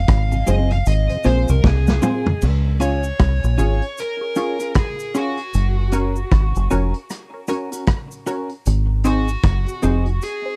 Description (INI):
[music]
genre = roots reggae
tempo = 77 BPM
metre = 4/4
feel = swing 60% on 16ths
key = Db major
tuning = A4 = 439 Hz
[part]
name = dark smooth lead guitar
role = melody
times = 0.0-10.6 s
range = Gb4 to F5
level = -30 LUFS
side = equal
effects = overdrive, dub echo
[part]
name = deep dub fingered electric bass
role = bass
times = 0.0-10.2 s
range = F1 to Db2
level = -20 LUFS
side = equal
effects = none
[part]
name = vintage drum kit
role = drums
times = 0.1-10.4 s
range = crash cymbal, hi-hat, kick drum, rim click, snare drum, toms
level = -21 LUFS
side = equal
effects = none
[part]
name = clean electric guitar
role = accompaniment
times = 0.3-10.1 s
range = C4 to Bb4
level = -28 LUFS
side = equal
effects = harmonic tremolo, dub echo
[part]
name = mellow tonewheel organ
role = accompaniment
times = 0.3-2.3 s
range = F2 to F4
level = -30 LUFS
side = equal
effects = none
[part]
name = cabasa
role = percussion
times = 0.3-10.4 s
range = none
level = -39 LUFS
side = equal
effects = none
[part]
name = filtered dub chord stab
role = stabs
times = 0.5-10.5 s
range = C4 to Db5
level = -28 LUFS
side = equal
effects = phaser
[sound]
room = little or no reverb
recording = dry, close 1970s-style studio recording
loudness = -19 LUFS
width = mono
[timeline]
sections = 0.0-2.4 A section; 2.4-10.6 B section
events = lead electric guitar solo 0.0-2.4; drum fill 1.6-2.4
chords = 0.0 Fm; 2.4 Db; 5.5 Gb; 8.7 Ab